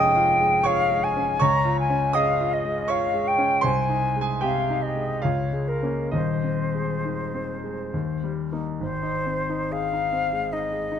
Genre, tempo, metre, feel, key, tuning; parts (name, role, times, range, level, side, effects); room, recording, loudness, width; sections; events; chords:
classical, romantic duo for flute and grand piano; 63-82 BPM; 3/4; rubato; Ab major; A4 = 439 Hz
silver concert flute; melody; 0.0-11.0 s; Bb4 to Bb5; -24 LUFS; left 2 dB
clear concert grand piano; accompaniment; 0.0-11.0 s; Eb1 to Eb6; -24 LUFS; right 1 dB
light reverb; close, detailed microphones; -21 LUFS; side -8 dB against mid
0.0-8.8 A section; 8.8-11.0 B section
0.0 Db/F; 1.4 Db; 3.6 Ab/C; 5.2 Bbm7/Db; 6.1 Ab/Eb; 7.9 Eb; 8.8 Ab